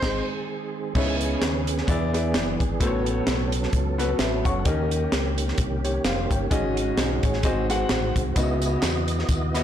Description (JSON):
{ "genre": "uptempo gospel", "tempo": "130 BPM", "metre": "4/4", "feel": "swing 56% on 8ths", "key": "C# minor", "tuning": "A4 = 438 Hz", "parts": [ { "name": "growling alto saxophone", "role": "melody", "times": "0.0-0.5 s", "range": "B#4", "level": "-34 LUFS", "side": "right 3 dB", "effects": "none" }, { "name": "warm concert grand piano", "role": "accompaniment", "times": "0.0-9.6 s", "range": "G#2 to C#6", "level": "-27 LUFS", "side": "left 2 dB", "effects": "none" }, { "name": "tonewheel organ", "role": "sustained chords", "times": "0.0-9.6 s", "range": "C#3 to D#5", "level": "-30 LUFS", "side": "right 4 dB", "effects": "slow rotary speaker, chorus vibrato" }, { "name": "fingered electric bass", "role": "bass", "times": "0.0-9.6 s", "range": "E#1 to E2", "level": "-27 LUFS", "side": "equal", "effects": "none" }, { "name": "crisp fusion drum kit", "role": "drums", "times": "0.0-9.6 s", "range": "crash cymbal, hi-hat, kick drum, snare drum", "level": "-26 LUFS", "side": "equal", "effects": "none" }, { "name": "tambourine and handclaps", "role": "percussion", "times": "8.4-9.6 s", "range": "none", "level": "-37 LUFS", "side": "left 1 dB", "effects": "none" } ], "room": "light reverb", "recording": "blown-out, overdriven recording, overdrive", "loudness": "-22 LUFS", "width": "side -10 dB against mid", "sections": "1.0-9.6 A section", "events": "band accent 0.0-1.0; grand piano fill 4.0-4.7", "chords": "0.0 G#; 1.0 C#m9; 1.9 E7; 2.8 A69; 4.7 D#7; 6.5 G#7sus4; 7.4 G#7; 8.4 C#m11", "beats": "0.03 0.49 | 0.95 1.42 1.88 2.34 | 2.81 3.27 3.73 4.20 | 4.66 5.12 5.59 6.05 | 6.51 6.97 7.44 7.90 | 8.37 8.83 9.29" }